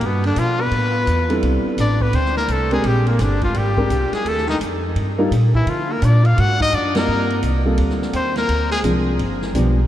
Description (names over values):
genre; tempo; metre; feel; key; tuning
jazz, small-group swing and bop; 170 BPM; 4/4; swing 63% on 8ths; G minor; A4 = 439 Hz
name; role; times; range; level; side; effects
brilliant trumpet; melody; 0.0-8.8 s; Bb3 to F#5; -22 LUFS; left 2 dB; none
growling baritone saxophone; second line; 0.0-8.8 s; Bb2 to F#4; -26 LUFS; right 1 dB; none
upright bass; bass; 0.0-9.9 s; G1 to D3; -19 LUFS; equal; none
vintage drum kit; drums; 0.0-9.7 s; hi-hat, kick drum, ride cymbal, snare drum; -31 LUFS; equal; none
warm baby grand piano; accompaniment; 1.3-9.8 s; F3 to Bb4; -23 LUFS; equal; none
room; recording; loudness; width
wet cathedral reverb, RT60 6.5 s; in a vast, echoing space; -16 LUFS; side -12 dB against mid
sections
0.0-9.9 A section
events
band accent 6.9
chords
0.0 G69; 1.4 C69; 2.8 Bb13; 4.3 Ebadd9; 5.7 Daug; 7.1 Gm11; 8.5 Dm7b5; 9.2 G7